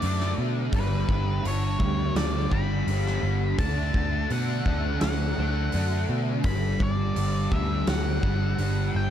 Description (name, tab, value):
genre	rock, shoegaze and dream pop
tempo	84 BPM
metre	4/4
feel	straight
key	G lydian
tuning	A4 = 439 Hz
part	octave-fuzz lead guitar	melody	0.0-9.1 s	B4 to B5	-33 LUFS	left 2 dB	distortion, analog delay
part	fuzz guitar	riff	0.0-9.1 s	G2 to D4	-29 LUFS	equal	distortion, ensemble chorus
part	vintage muted picked electric bass	bass	0.0-9.1 s	G1 to B2	-27 LUFS	equal	none
part	huge arena drum kit	drums	0.0-8.8 s	hi-hat, kick drum, snare drum	-30 LUFS	equal	none
room	small room ambience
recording	dark, warm production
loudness	-23 LUFS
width	side -10 dB against mid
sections	0.0-9.1 A section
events	none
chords	0.0 D; 0.7 G; 3.6 D; 6.4 G5